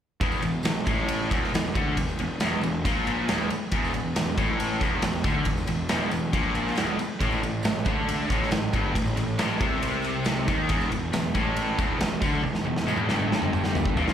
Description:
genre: classic rock.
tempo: 138 BPM.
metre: 4/4.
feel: straight.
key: unclear.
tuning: A4 = 440 Hz.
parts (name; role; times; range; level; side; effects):
biting overdriven guitar; riff; 0.2-14.1 s; E2 to D#3; -29 LUFS; left 9 dB; slapback echo.
tight distorted guitar; riff; 0.2-14.1 s; E2 to D#3; -30 LUFS; right 9 dB; distortion, slapback echo.
fuzz picked electric bass; bass; 0.2-14.1 s; E1 to D#2; -30 LUFS; equal; overdrive.
big rock drum kit; drums; 0.2-14.1 s; kick drum, ride cymbal, snare drum, toms; -27 LUFS; equal; none.
tambourine; percussion; 0.3-14.1 s; none; -50 LUFS; right 3 dB; none.
room: light reverb.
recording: live gig heard through the venue's PA, club reverb.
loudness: -23 LUFS.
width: side -9 dB against mid.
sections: 0.2-14.1 A section.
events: drum fill 12.4-14.1.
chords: 0.2 A#maj7#11/E; 7.2 Gsus24; 10.7 Emadd11.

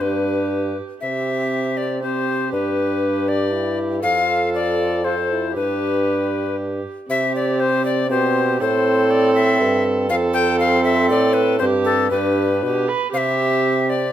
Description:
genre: classical, renaissance-style consort dance.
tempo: 119 BPM.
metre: 3/4.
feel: straight.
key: C major.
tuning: A4 = 440 Hz.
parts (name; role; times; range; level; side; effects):
bright tenor recorder; melody; 0.0-14.1 s; A4 to G5; -21 LUFS; left 4 dB; none.
warm viola; second line; 0.0-14.1 s; G4 to B4; -24 LUFS; right 4 dB; none.
mellow trombone; accompaniment; 0.0-14.1 s; C4 to F4; -24 LUFS; equal; none.
warm bassoon; bass; 0.0-14.1 s; F2 to C3; -22 LUFS; right 2 dB; none.
room: moderate recital hall reverb, RT60 1.4 s.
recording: none.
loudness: -17 LUFS.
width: side -11 dB against mid.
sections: 0.0-7.1 A section; 7.1-14.1 A section.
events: none.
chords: 0.0 G; 1.0 C; 2.5 G; 4.0 F; 5.6 G; 7.1 C5; 8.6 Am; 10.1 F; 11.6 Gsus4; 12.1 G; 13.1 C.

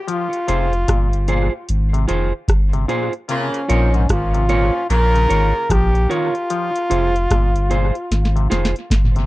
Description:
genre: roots reggae.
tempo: 75 BPM.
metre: 4/4.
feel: swing 62% on 16ths.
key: F minor.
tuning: A4 = 441 Hz.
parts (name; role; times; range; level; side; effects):
brilliant trombone; melody; 0.0-8.9 s; Db4 to Bb4; -22 LUFS; equal; tape echo.
mellow clav; arpeggios; 0.1-9.3 s; Ab2 to F3; -26 LUFS; left 7 dB; none.
booming analog drum machine; drums; 0.1-9.3 s; hi-hat, kick drum, rim click, snare drum, toms; -19 LUFS; equal; tape echo.
clean electric guitar; accompaniment; 0.5-9.2 s; F4 to Db5; -25 LUFS; right 4 dB; tape echo.
warm sub bass; bass; 0.5-9.3 s; F1 to Bb1; -18 LUFS; equal; none.
warm horn section; second line; 3.3-5.7 s; Bb2 to C5; -27 LUFS; equal; tape echo.
room: little or no reverb.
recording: dry, close 1970s-style studio recording.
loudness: -15 LUFS.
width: side -18 dB against mid.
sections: 0.0-9.3 A section.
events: drum fill 8.1-9.3.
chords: 0.1 Fm; 3.3 Bbm; 6.5 Fm.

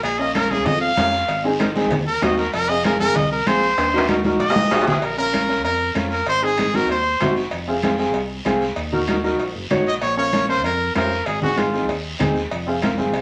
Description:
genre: latin, cumbia.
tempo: 192 BPM.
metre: 4/4.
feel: straight.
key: Bb minor.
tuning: A4 = 438 Hz.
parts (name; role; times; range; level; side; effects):
brilliant trumpet; melody; 0.0-7.3, 9.9-11.9 s; F4 to F5; -23 LUFS; equal; none.
fingered electric bass; bass; 0.0-13.2 s; F1 to F2; -32 LUFS; equal; none.
cowbell and timbales; percussion; 0.0-13.2 s; none; -29 LUFS; equal; none.
guiro; percussion; 0.0-13.2 s; none; -35 LUFS; equal; none.
warm upright piano; accompaniment; 0.2-13.2 s; C4 to Db5; -24 LUFS; equal; none.
congas; percussion; 0.4-13.1 s; none; -27 LUFS; equal; none.
room: wet studio ambience, RT60 0.5 s.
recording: none.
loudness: -20 LUFS.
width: mono.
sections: 0.0-5.0 A section; 5.0-13.2 B section.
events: trumpet solo 0.0-5.0; drum fill 3.8-5.0.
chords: 0.0 Bbm; 1.3 Ab; 2.5 Fm; 3.8 Ebm; 5.0 Bbm; 6.3 Ab; 7.5 Fm; 8.8 Ebm; 10.0 Bbm; 11.3 Ab; 12.5 Fm.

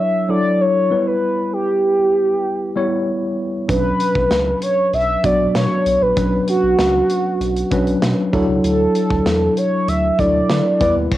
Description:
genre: 1980s-style pop.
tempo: 97 BPM.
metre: 4/4.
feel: straight.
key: unclear.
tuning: A4 = 440 Hz.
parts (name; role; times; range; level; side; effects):
mellow horn-like synth lead; melody; 0.0-11.2 s; F#4 to E5; -17 LUFS; right 1 dB; chorus, cassette tape, plate reverb.
mellow tine electric piano; accompaniment; 0.0-11.1 s; F#3 to C#5; -19 LUFS; left 1 dB; medium stereo tremolo, cassette tape, plate reverb.
round analog bass; bass; 3.7-11.1 s; A#1 to D3; -23 LUFS; equal; none.
modern studio drum kit; drums; 3.7-11.2 s; crash cymbal, hi-hat, kick drum, snare drum; -24 LUFS; equal; none.
room: moderate small room reverb, RT60 0.5 s.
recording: home recording on cassette.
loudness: -15 LUFS.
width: side -14 dB against mid.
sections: 0.0-11.2 A section.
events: none.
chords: 0.0 Dadd9; 0.9 Em; 3.7 Bmadd9; 8.3 Dadd9.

